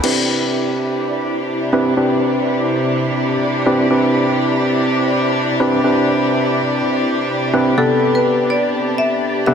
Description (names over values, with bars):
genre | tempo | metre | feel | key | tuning
house | 124 BPM | 4/4 | swing 55% on 16ths | C major | A4 = 438 Hz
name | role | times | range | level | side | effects
soft string machine | sustained chords | 0.0-9.5 s | E4 to B5 | -23 LUFS | equal | ensemble chorus
percussive organ stab | stabs | 0.0-9.5 s | C3 to B4 | -17 LUFS | equal | chorus, digital delay
rich chamber string section | texture | 0.0-9.5 s | C3 to G4 | -20 LUFS | right 1 dB | none
marimba with medium hard mallets | melody | 7.8-9.5 s | A4 to E5 | -18 LUFS | left 2 dB | dub echo
room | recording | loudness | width
wet lush hall reverb, RT60 2.4 s | dense, heavily limited modern master | -14 LUFS | side -7 dB against mid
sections
0.0-9.5 A section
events
filter sweep on synth stab 0.0-9.5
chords
0.0 Cmaj9; 7.8 Gadd9/C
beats
| 0.04 0.52 1.00 1.49 | 1.97 2.46 2.94 3.42 | 3.91 4.39 4.87 5.36 | 5.84 6.33 6.81 7.29 | 7.78 8.26 8.74 9.23